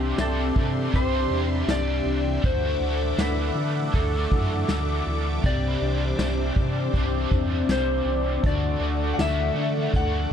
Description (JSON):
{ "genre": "dream pop", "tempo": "80 BPM", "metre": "4/4", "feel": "straight", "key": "D mixolydian", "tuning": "A4 = 440 Hz", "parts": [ { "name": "electric slide guitar", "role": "melody", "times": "0.0-10.3 s", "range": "G4 to F#5", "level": "-30 LUFS", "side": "left 1 dB", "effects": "ping-pong delay" }, { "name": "biting overdriven guitar", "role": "accompaniment", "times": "0.0-10.3 s", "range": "C3 to G4", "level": "-31 LUFS", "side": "right 2 dB", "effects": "harmonic tremolo, analog chorus" }, { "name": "phased analog pad", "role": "sustained chords", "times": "0.0-10.3 s", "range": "G4 to D6", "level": "-31 LUFS", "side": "left 1 dB", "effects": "phaser, chorus" }, { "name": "electric guitar at the edge of break-up", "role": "arpeggios", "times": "0.0-10.3 s", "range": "C3 to G4", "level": "-30 LUFS", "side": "left 5 dB", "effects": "lush chorus, ping-pong delay" }, { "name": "sub bass with octave", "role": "bass", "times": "0.0-10.3 s", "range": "C2 to D3", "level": "-27 LUFS", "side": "equal", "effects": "none" }, { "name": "small celesta", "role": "texture", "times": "0.0-10.3 s", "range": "E5 to D6", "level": "-43 LUFS", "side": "equal", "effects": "none" }, { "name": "vintage brush drum kit", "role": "drums", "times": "0.2-10.1 s", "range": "hi-hat, kick drum, snare drum, tambourine", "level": "-26 LUFS", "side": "equal", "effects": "none" } ], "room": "light reverb, small room ambience", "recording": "dark, warm production", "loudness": "-22 LUFS", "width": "side -8 dB against mid", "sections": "0.0-10.3 A section", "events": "none", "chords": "0.0 Cadd9; 2.4 Dadd9; 5.4 Cadd9; 8.4 Dadd9", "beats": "0.19 0.94 1.69 | 2.44 3.19 3.94 4.69 | 5.44 6.19 6.94 7.69 | 8.44 9.19 9.94" }